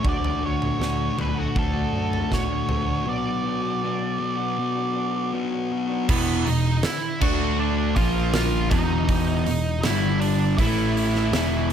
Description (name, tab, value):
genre	quiet-loud alternative rock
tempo	80 BPM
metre	4/4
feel	straight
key	unclear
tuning	A4 = 440 Hz
part	octave-fuzz lead guitar	melody	0.0-11.7 s	B3 to F#5	-28 LUFS	right 4 dB	distortion, slapback echo
part	electric guitar through a small old amp	arpeggios	0.0-6.1 s	B2 to F#4	-31 LUFS	right 10 dB	spring reverb
part	thick fuzz guitar	riff	0.0-11.7 s	E2 to D4	-26 LUFS	left 8 dB	distortion
part	overdriven picked electric bass	bass	0.0-11.7 s	E1 to F#2	-27 LUFS	right 1 dB	none
part	huge arena drum kit	drums	0.0-11.7 s	crash cymbal, hi-hat, kick drum, snare drum, toms	-26 LUFS	right 1 dB	none
part	crunchy overdriven guitar	riff	6.1-11.7 s	E2 to D4	-29 LUFS	right 16 dB	none
part	overdriven electric guitar	riff	6.1-11.7 s	E2 to D4	-30 LUFS	right 3 dB	none
room	little or no reverb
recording	none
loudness	-21 LUFS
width	side -8 dB against mid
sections	0.0-6.1 A section; 6.1-11.7 B section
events	none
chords	0.0 D; 3.1 Bm; 6.1 E5; 7.2 D5; 8.0 A#5; 8.7 E5; 9.8 G5; 10.6 A5